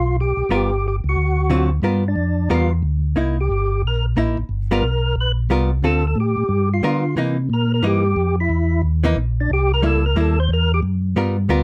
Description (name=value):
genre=jazz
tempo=180 BPM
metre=4/4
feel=swing 63% on 8ths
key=unclear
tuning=A4 = 442 Hz
part: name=percussive tonewheel organ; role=melody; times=0.0-10.8 s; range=D4 to C5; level=-24 LUFS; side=equal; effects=slow rotary speaker, chorus vibrato
part: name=mellow tonewheel organ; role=bass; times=0.0-11.6 s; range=G1 to D3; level=-21 LUFS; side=equal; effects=chorus vibrato, slow rotary speaker
part: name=archtop guitar, miked and amplified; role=accompaniment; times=0.5-11.6 s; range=D3 to A#4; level=-23 LUFS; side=equal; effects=none
room=little or no reverb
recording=close, detailed microphones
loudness=-19 LUFS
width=mono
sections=0.0-1.8 A section; 1.8-11.6 B section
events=tonewheel organ solo 1.8-11.6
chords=0.0 G7#9; 1.2 D7#9; 1.8 G7#9; 3.2 C7#9; 4.5 G7#9; 5.8 Dm7; 6.5 G7#9; 7.2 C7#9; 9.8 C#dim7